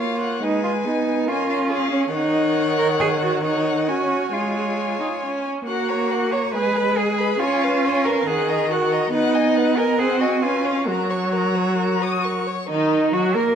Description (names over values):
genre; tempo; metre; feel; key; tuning
quick classical-period movement for string quartet; 138 BPM; 4/4; rubato; F# major; A4 = 440 Hz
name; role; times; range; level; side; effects
rich violin; melody; 0.0-13.4 s; D#4 to D#6; -28 LUFS; left 7 dB; none
dark violin; second line; 0.0-13.6 s; D#4 to D#5; -26 LUFS; left 3 dB; none
rich viola; accompaniment; 0.0-13.6 s; D#3 to D#4; -23 LUFS; right 1 dB; none
clear cello; bass; 0.0-13.6 s; C#4 to C#5; -22 LUFS; right 3 dB; none
room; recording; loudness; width
moderate recital hall reverb, RT60 1.4 s; none; -18 LUFS; side -8 dB against mid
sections
0.0-12.7 A section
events
none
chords
0.4 G#m; 1.3 C#; 2.1 D#m7; 3.9 C#; 5.7 F#/A#; 6.5 G#m; 7.4 C#7; 8.3 D#m; 9.1 G#m7/B; 10.0 G#7/B#; 10.4 C#7; 10.9 F#; 12.7 D#m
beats
0.00 | 0.42 0.85 1.28 1.71 | 2.14 2.57 3.00 3.44 | 3.88 4.34 4.78 5.23 | 5.67 6.11 6.55 6.98 | 7.41 7.84 8.28 8.71 | 9.13 9.56 9.99 10.43 | 10.88 11.34 11.79 12.24 | 12.70 13.13